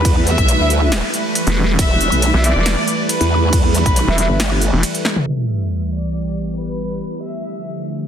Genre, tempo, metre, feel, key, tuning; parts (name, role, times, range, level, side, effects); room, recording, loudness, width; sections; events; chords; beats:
heavy wobble dubstep; 138 BPM; 4/4; half-time; E phrygian; A4 = 440 Hz
warm studio violin section; melody; 0.0-7.8 s; B4 to E5; -23 LUFS; left 1 dB; digital delay
evolving wavetable pad; sustained chords; 0.0-8.1 s; D3 to B4; -22 LUFS; right 1 dB; phaser, built-in reverb, sidechain pumping
growl bass; bass; 0.0-4.7 s; E1 to E2; -16 LUFS; equal; chorus, overdrive
big-room dance drum kit; drums; 0.0-5.2 s; hi-hat, ride cymbal, snare drum, toms; -21 LUFS; equal
electronic kick drum; drums; 0.0-3.9 s; -16 LUFS; equal
mellow brass ensemble; stabs; 0.6-4.3 s; E4 to E5; -24 LUFS; right 4 dB; digital delay
vowel-sweep wobble bass; bass; 1.5-4.8 s; E1 to B1; -15 LUFS; equal; chorus, overdrive
sub drop; sound effects; 5.3-7.0 s; -22 LUFS; equal
light reverb; dense, heavily limited modern master, low-pass filter; -14 LUFS; side -9 dB against mid
0.0-5.3 A section; 5.3-8.1 B section
drop 0.0-5.3; break 4.8-5.3; drum fill 5.0; impact 5.3-7.0; filter sweep on ambient pad 5.3-8.1; filter sweep 5.3-8.1
0.0 Em; 7.0 Dmadd9
| 0.05 0.48 0.92 1.35 | 1.79 2.22 2.66 3.09 | 3.53 3.96 4.40 4.83 | 5.27 5.70 6.14 6.57 | 7.01 7.44 7.88